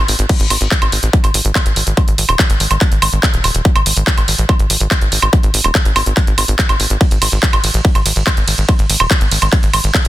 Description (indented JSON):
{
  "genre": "psychedelic trance",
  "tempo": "143 BPM",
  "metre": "4/4",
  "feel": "straight",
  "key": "unclear",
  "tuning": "A4 = 442 Hz",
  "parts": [
    { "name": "tight sequencer bass", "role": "bass", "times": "0.0-10.1 s", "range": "Eb1 to A1", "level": "-16 LUFS", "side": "equal", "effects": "none" },
    { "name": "big-room dance drum kit", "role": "drums", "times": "0.1-10.1 s", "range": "crash cymbal, handclaps, hi-hat, ride cymbal, woodblock", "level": "-15 LUFS", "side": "right 1 dB", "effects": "overdrive" },
    { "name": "electronic kick drum", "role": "drums", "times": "0.3-10.0 s", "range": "none", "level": "-14 LUFS", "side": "equal", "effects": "overdrive" }
  ],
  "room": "little or no reverb",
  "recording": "dense, heavily limited modern master",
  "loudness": "-11 LUFS",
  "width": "side -15 dB against mid",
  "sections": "0.0-10.1 A section",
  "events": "none",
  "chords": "none",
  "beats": "| 0.29 0.71 1.13 1.55 | 1.97 2.39 2.81 3.23 | 3.65 4.07 4.49 4.91 | 5.33 5.75 6.17 6.59 | 7.01 7.43 7.85 8.27 | 8.69 9.11 9.53 9.95"
}